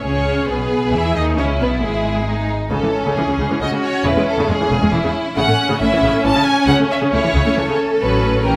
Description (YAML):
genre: quick classical-period movement for string orchestra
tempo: 135 BPM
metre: 3/4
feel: rubato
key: E major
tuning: A4 = 443 Hz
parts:
  - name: clear symphonic violin section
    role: melody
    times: 0.0-8.6 s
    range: G#4 to A5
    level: -24 LUFS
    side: equal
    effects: none
  - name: rich symphonic violin section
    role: second line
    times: 0.0-8.6 s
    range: C#4 to A4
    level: -24 LUFS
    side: equal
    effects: none
  - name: rich symphonic viola section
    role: accompaniment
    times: 0.0-8.6 s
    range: C#3 to E4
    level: -22 LUFS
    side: equal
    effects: none
  - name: clear studio cello section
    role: bass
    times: 0.0-8.6 s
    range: C#2 to E3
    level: -27 LUFS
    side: equal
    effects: none
  - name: rich symphonic double bass section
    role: bass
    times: 0.0-8.6 s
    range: E1 to E2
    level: -25 LUFS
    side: equal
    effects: none
room: moderate concert hall reverb, RT60 2.1 s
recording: none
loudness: -17 LUFS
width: mono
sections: 0.0-8.6 A section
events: none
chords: 0.0 E; 2.7 C#5; 4.1 C#m/E; 5.4 A; 6.7 A/C#; 8.0 F#m/A